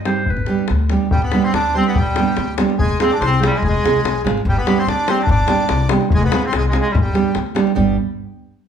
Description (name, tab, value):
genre	balkan folk, Balkan wedding band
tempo	145 BPM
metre	2/4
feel	straight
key	unclear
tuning	A4 = 440 Hz
part	upright bass	bass	0.0-8.0 s	F1 to G2	-21 LUFS	left 2 dB	none
part	bright clarinet	melody	0.1-7.4 s	G3 to C5	-22 LUFS	equal	none
part	nylon-string guitar	accompaniment	0.1-8.0 s	G3 to Ab4	-19 LUFS	right 6 dB	none
part	davul	percussion	0.1-8.0 s	none	-21 LUFS	left 3 dB	none
part	accordion	second line	1.1-7.4 s	F4 to D5	-24 LUFS	left 2 dB	none
room	wet large studio reverb, RT60 1.0 s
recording	band playing live in one room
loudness	-14 LUFS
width	side -8 dB against mid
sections	0.0-1.1 A section; 1.1-7.8 B section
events	none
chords	0.3 G; 2.8 Fm; 4.5 G; 6.1 Fm; 6.9 G